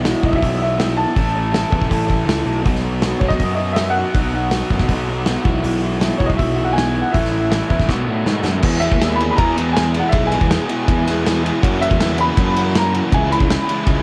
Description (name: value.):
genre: indie rock.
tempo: 161 BPM.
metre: 4/4.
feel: straight.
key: E lydian from 8.6 s.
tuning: A4 = 441 Hz.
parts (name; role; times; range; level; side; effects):
crunchy overdriven guitar; riff; 0.0-14.0 s; E2 to A4; -23 LUFS; equal; cassette tape.
fuzz picked electric bass; bass; 0.0-14.0 s; A1 to A2; -24 LUFS; equal; overdrive.
loose indie drum kit; drums; 0.0-14.0 s; crash cymbal, hi-hat, kick drum, ride cymbal, snare drum; -22 LUFS; equal; cassette tape.
warm upright piano; melody; 0.2-14.0 s; C#5 to B5; -25 LUFS; equal; cassette tape, tape echo.
glockenspiel with rubber mallets; second line; 0.2-7.8 s; C#6 to A6; -36 LUFS; equal; cassette tape.
room: light reverb.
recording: home recording on cassette.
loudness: -17 LUFS.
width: mono.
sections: 0.0-8.6 A section; 8.6-14.0 B section.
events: drum fill 7.9-8.6.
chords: 0.0 Esus2/B; 1.2 A; 2.7 B; 5.5 Esus2/B; 7.1 A; 7.9 B7; 8.6 Emaj7; 11.6 F#7; 13.1 C#m7.